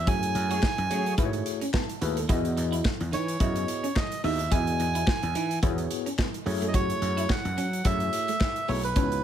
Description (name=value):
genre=early-eighties boogie funk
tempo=108 BPM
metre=4/4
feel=swing 56% on 16ths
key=unclear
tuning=A4 = 441 Hz
part: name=melodica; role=melody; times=0.0-9.2 s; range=B4 to G#5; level=-30 LUFS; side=right 4 dB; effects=slapback echo
part: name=gritty slap bass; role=bass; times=0.0-9.2 s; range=B1 to F#3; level=-29 LUFS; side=equal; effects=overdrive
part: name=tine electric piano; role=accompaniment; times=0.1-9.2 s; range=A3 to A5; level=-32 LUFS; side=left 2 dB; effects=medium stereo tremolo
part: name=clean electric guitar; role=riff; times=0.1-9.1 s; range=A3 to F#4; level=-35 LUFS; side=right 4 dB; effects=analog chorus
part: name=modern studio drum kit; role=drums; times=0.1-9.2 s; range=hi-hat, kick drum, snare drum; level=-29 LUFS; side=equal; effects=none
part: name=analog synth brass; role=second line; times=0.5-1.1 s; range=A3 to C#5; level=-35 LUFS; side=left 2 dB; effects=chorus
part: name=group handclap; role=percussion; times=0.6-8.6 s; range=none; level=-39 LUFS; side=left 10 dB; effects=none
room=small room reverb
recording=none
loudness=-24 LUFS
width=side -10 dB against mid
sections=0.0-9.2 A section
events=band accent 0.1-2.3; tine electric piano fill 1.5-2.3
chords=0.0 F#m9; 2.3 Emaj9; 6.5 F#m9